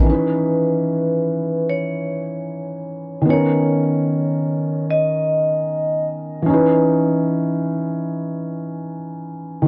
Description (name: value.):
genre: hip hop.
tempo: 75 BPM.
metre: 4/4.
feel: swing 62% on 16ths.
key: unclear.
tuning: A4 = 440 Hz.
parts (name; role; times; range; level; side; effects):
felt-muted upright piano; accompaniment; 0.0-9.7 s; D#3 to B4; -21 LUFS; equal; low-pass filter.
vibraphone with medium hard mallets; melody; 0.1-6.0 s; B4 to D#5; -25 LUFS; equal; low-pass filter.
room: light reverb, small room ambience.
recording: none.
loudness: -20 LUFS.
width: mono.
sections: 0.1-9.7 A section.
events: none.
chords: 0.1 C#m9; 3.3 Bmaj9; 6.5 C#m9.